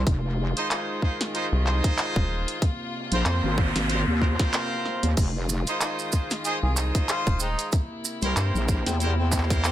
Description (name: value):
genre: glitch hop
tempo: 94 BPM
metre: 4/4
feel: swing 56% on 16ths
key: F minor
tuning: A4 = 439 Hz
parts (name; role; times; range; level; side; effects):
- rich chamber string section; sustained chords; 0.0-9.7 s; C3 to F4; -34 LUFS; left 1 dB; sidechain pumping
- brilliant horn section; stabs; 0.0-9.7 s; C4 to C5; -30 LUFS; right 1 dB; vintage 12-bit sampler grit, sidechain pumping, tape echo
- wobble bass; bass; 0.0-9.7 s; F1 to E2; -24 LUFS; equal; chorus, tube saturation
- drum and bass drum kit; drums; 0.1-9.7 s; crash cymbal, handclaps, hi-hat, snare drum; -29 LUFS; equal; studio reverb
- electronic kick drum; drums; 0.1-9.6 s; none; -23 LUFS; equal; overdrive, studio reverb
- rubbery square bass; bass; 1.5-8.5 s; Eb1 to G2; -25 LUFS; equal; none
- noise sweep; sound effects; 2.9-5.2 s; none; -33 LUFS; equal; none
- maracas; percussion; 5.2-9.7 s; none; -32 LUFS; right 6 dB; none
- mellow harmonica; melody; 6.4-9.7 s; Ab3 to Ab4; -32 LUFS; left 2 dB; tape echo
room: light reverb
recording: none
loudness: -22 LUFS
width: side -12 dB against mid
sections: 0.0-9.7 A section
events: noise sweep 2.9-5.2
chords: 0.1 Fm7; 2.6 Bbsus2; 5.2 Fm7; 7.7 C7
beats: | 0.07 0.70 1.34 1.98 | 2.62 3.26 3.90 4.54 | 5.17 5.81 6.45 7.09 | 7.73 8.37 9.00 9.64